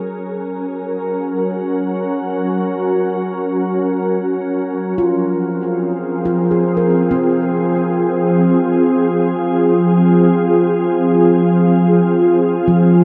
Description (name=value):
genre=ambient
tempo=free time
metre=none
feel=none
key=unclear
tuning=A4 = 440 Hz
part: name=glassy FM pad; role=sustained chords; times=0.0-13.0 s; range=F3 to Bb4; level=-16 LUFS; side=equal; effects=ensemble chorus, built-in reverb
part: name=handpan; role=arpeggios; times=5.0-8.5, 12.7-13.0 s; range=F3 to Bb4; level=-21 LUFS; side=equal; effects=diffuse ambient delay
room=wet huge ambient reverb, RT60 8.7 s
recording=none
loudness=-16 LUFS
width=mono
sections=0.0-5.0 A section; 5.0-13.0 B section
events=none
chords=0.0 Gbadd9; 5.0 Fm